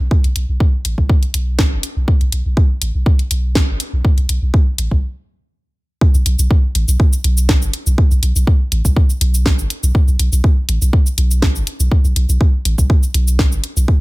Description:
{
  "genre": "minimal techno",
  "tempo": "122 BPM",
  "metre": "4/4",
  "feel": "straight",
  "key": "unclear",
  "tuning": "A4 = 442 Hz",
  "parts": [
    { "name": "punchy sub bass", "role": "bass", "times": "0.0-13.8 s", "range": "F#1 to B1", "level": "-16 LUFS", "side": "equal", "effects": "tube saturation, sidechain pumping" },
    { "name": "electronic kick drum", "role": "drums", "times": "0.1-14.0 s", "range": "none", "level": "-13 LUFS", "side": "equal", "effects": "studio ambience" },
    { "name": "house drum kit", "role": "drums", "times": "0.2-13.9 s", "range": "cabasa, hi-hat, snare drum", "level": "-20 LUFS", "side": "equal", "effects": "studio ambience" }
  ],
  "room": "digital ambience",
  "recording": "none",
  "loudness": "-13 LUFS",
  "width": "side -21 dB against mid",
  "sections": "0.0-6.0 A section; 6.0-14.0 B section",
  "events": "build-up 0.0-6.0; stop 5.0-6.0; drop 6.0-14.0",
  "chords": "none"
}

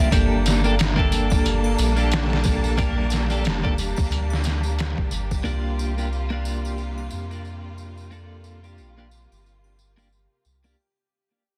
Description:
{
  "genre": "trip hop",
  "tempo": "90 BPM",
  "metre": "4/4",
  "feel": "swing 58% on 16ths",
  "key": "G minor",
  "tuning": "A4 = 440 Hz",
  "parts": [
    { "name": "twelve-string electric guitar", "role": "accompaniment", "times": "0.0-10.8 s", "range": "Bb3 to Bb4", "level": "-29 LUFS", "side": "equal", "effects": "tremolo, tape echo" },
    { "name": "clear studio string section", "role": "sustained chords", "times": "0.0-10.7 s", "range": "C3 to A5", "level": "-34 LUFS", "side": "equal", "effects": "none" },
    { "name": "soft dub sub bass", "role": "bass", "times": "0.0-10.7 s", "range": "F1 to F2", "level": "-27 LUFS", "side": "equal", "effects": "tube saturation" },
    { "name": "trip hop sampler-style drum kit", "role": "drums", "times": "0.1-5.4 s", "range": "hi-hat, kick drum, snare drum", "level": "-26 LUFS", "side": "equal", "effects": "overdrive" },
    { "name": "tambourine and triangle", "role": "percussion", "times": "0.1-10.8 s", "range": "none", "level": "-39 LUFS", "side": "equal", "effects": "none" },
    { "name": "bowed-like drone", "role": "texture", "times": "2.9-10.8 s", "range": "G4", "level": "-44 LUFS", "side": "equal", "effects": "none" }
  ],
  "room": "little or no reverb",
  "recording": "dense, heavily limited modern master, vinyl crackle",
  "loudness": "-23 LUFS",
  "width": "mono",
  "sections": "0.1-10.8 A section",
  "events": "fade-out 0.1-10.8; filter sweep on sub bass 0.1-10.8",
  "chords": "0.1 Gmadd9; 5.4 C7sus4"
}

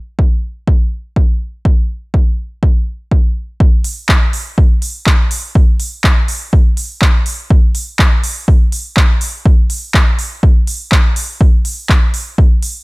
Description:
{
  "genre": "house",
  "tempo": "123 BPM",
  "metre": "4/4",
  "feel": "straight",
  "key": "none",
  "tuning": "none",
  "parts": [
    { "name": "electronic kick drum", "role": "drums", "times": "0.2-12.5 s", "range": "none", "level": "-10 LUFS", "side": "equal", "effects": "none" },
    { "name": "deep house drum kit", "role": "drums", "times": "3.8-12.7 s", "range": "handclaps, hi-hat", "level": "-18 LUFS", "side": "equal", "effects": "none" }
  ],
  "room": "little or no reverb",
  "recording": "none",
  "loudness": "-11 LUFS",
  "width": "side -24 dB against mid",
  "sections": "0.0-3.6 A section; 3.6-12.8 B section",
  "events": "drop 3.6-12.8",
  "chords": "none"
}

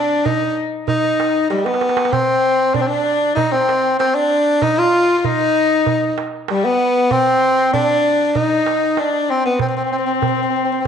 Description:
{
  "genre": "Arabic maqam ensemble",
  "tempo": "96 BPM",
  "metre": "4/4",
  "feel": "straight",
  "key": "C maqam nahawand",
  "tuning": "A4 = 440 Hz",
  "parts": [
    { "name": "mellow tenor saxophone", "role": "melody", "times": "0.0-10.9 s", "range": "G3 to F4", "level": "-16 LUFS", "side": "equal", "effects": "none" },
    { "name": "warm cello", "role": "second line", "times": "0.0-10.9 s", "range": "G3 to F4", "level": "-21 LUFS", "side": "left 7 dB", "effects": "none" },
    { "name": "darbuka", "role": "percussion", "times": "0.1-10.9 s", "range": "none", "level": "-25 LUFS", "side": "right 9 dB", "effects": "none" }
  ],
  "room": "wet spring reverb, RT60 1.4 s, small room ambience",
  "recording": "1960s-style stereo with parts hard left and right, nothing above 10.5 kHz",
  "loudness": "-14 LUFS",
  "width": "side -7 dB against mid",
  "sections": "0.0-10.9 A section",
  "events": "drum fill 1.5-2.1",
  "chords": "none"
}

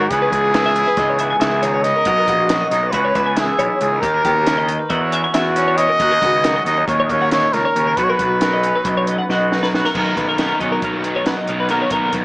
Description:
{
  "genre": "math rock and midwest emo",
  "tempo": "274 BPM (eighths)",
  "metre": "9/8",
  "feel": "straight",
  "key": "B major",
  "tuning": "A4 = 439 Hz",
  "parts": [
    { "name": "breathy trumpet", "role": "melody", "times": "0.0-9.5 s", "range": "F#4 to D#5", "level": "-17 LUFS", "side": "equal", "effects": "none" },
    { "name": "twelve-string electric guitar", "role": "accompaniment", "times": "0.0-12.2 s", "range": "F#2 to A#4", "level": "-23 LUFS", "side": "right 1 dB", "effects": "none" },
    { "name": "twelve-string electric guitar", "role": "arpeggios", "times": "0.0-12.2 s", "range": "F#4 to G#5", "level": "-22 LUFS", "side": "left 1 dB", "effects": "tremolo" },
    { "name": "fuzz picked electric bass", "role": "bass", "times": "0.0-12.2 s", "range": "A#1 to E2", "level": "-22 LUFS", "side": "equal", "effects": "overdrive" },
    { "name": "compact cocktail drum kit", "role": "drums", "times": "0.1-12.2 s", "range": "crash cymbal, hi-hat, kick drum, snare drum", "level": "-24 LUFS", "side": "equal", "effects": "none" },
    { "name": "crunchy overdriven guitar", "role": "riff", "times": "10.0-12.2 s", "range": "B2 to D#4", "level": "-23 LUFS", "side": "equal", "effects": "none" }
  ],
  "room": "light reverb",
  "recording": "small speaker sound",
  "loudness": "-14 LUFS",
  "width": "side -24 dB against mid",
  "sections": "0.0-9.9 A section; 9.9-12.2 B section",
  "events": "drum fill 9.3-9.9",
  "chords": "0.1 C#m7; 2.1 Bmaj7; 2.9 C#m7; 4.0 D#7; 4.9 Esus2; 6.0 D#m7; 8.0 Bmaj7"
}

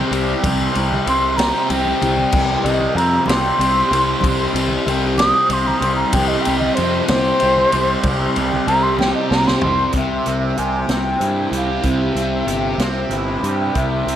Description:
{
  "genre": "psychedelic rock",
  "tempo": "63 BPM (dotted quarters)",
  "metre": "6/8",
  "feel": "straight",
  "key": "C major",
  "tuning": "A4 = 441 Hz",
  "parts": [
    { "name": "fuzz guitar", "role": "riff", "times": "0.0-14.2 s", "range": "C3 to G4", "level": "-20 LUFS", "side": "equal", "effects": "distortion, phaser, analog delay" },
    { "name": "fuzz picked electric bass", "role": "bass", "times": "0.0-14.2 s", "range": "G1 to G2", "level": "-22 LUFS", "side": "equal", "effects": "overdrive" },
    { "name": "vintage drum kit", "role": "drums", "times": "0.1-14.2 s", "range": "crash cymbal, hi-hat, kick drum, ride cymbal, snare drum, toms", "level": "-23 LUFS", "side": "equal", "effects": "none" },
    { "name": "congas", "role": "percussion", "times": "0.4-9.9 s", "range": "none", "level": "-31 LUFS", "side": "right 2 dB", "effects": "none" },
    { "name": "breathy mellow concert flute", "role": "melody", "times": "1.1-14.2 s", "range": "C5 to Eb6", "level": "-19 LUFS", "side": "equal", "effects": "analog delay" }
  ],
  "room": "light reverb, small room reverb",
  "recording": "echo-heavy mix",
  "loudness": "-15 LUFS",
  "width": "side -10 dB against mid",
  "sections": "0.0-9.9 A section; 9.9-14.2 B section",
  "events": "flute solo 0.0-9.9; drum fill 1.7-2.3, 9.0-9.9",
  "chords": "0.0 C5; 9.9 C"
}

